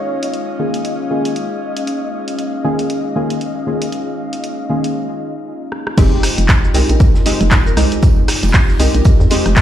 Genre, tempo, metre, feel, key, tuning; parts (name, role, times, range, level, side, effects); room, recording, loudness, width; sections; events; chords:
deep house; 117 BPM; 4/4; swing 58% on 16ths; F minor; A4 = 439 Hz
warm velvety synth lead; melody; 0.0-0.6 s; Db5; -27 LUFS; right 4 dB; chorus, digital delay
warbly tape-like pad; sustained chords; 0.0-9.6 s; Ab3 to Ab4; -24 LUFS; left 1 dB; chorus, built-in reverb, vintage 12-bit sampler grit, sidechain pumping
deep mellow chord stab; stabs; 0.0-9.6 s; Eb3 to Ab4; -20 LUFS; equal; analog chorus, ping-pong delay
airy breathy pad; texture; 0.0-5.0 s; Ab3 to F5; -24 LUFS; left 2 dB; chorus, sidechain pumping
punchy analog drum machine; drums; 0.2-9.6 s; crash cymbal, handclaps, hi-hat, rim click, shaker; -20 LUFS; equal; studio reverb
hollow knocking FM bass; bass; 6.0-9.6 s; F1 to F2; -15 LUFS; equal; sidechain pumping
electronic kick drum; drums; 6.0-9.6 s; -12 LUFS; equal; overdrive, studio reverb
tight funk drum kit; drums; 6.0-9.6 s; hi-hat, snare drum, tambourine; -33 LUFS; right 3 dB; sidechain pumping on hats, high-pass filter on hats, studio reverb, high-pass filter on snare, sidechain pumping on perc, high-pass filter on perc, high-pass filter on room
vibraphone with hard mallets; melody; 6.7-9.0 s; Bb4; -27 LUFS; left 5 dB; ping-pong delay
light reverb, small room reverb; played on a big sound system in a bare room, large studio reverb; -13 LUFS; side -11 dB against mid
0.0-6.0 A section; 6.0-9.6 B section
filter sweep on ambient pad 0.0-6.0; break 5.0-6.0; drum fill 5.7; drop 6.0-9.6
0.0 Eb9sus4; 6.0 Fm9